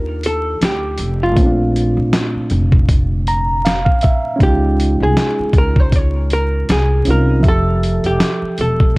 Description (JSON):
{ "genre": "lo-fi hip hop", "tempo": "79 BPM", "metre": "4/4", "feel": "swing 56% on 16ths", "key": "unclear", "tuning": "A4 = 440 Hz", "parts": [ { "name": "archtop guitar, miked and amplified", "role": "melody", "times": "0.0-8.9 s", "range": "F4 to Db5", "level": "-20 LUFS", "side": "equal", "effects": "low-pass filter" }, { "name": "overdriven reed electric piano", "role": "accompaniment", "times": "0.0-9.0 s", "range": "Bb2 to Bb5", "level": "-20 LUFS", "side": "right 1 dB", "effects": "low-pass filter" }, { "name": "upright bass", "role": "bass", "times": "0.0-9.0 s", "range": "E1 to Eb2", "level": "-18 LUFS", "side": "equal", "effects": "none" }, { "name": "dusty soul sampler-style drum kit", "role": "drums", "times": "0.2-8.9 s", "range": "hi-hat, kick drum, snare drum", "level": "-15 LUFS", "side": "equal", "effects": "none" } ], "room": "light reverb, digital ambience", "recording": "vinyl crackle", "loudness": "-13 LUFS", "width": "side -23 dB against mid", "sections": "0.0-9.0 A section", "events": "none", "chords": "0.0 Ebmaj9; 1.4 Bbmaj9; 4.4 Dbmaj9; 7.4 Fmaj9", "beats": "0.60 | 1.36 2.12 2.88 3.64 | 4.40 5.16 5.92 6.68 | 7.44 8.20 8.96" }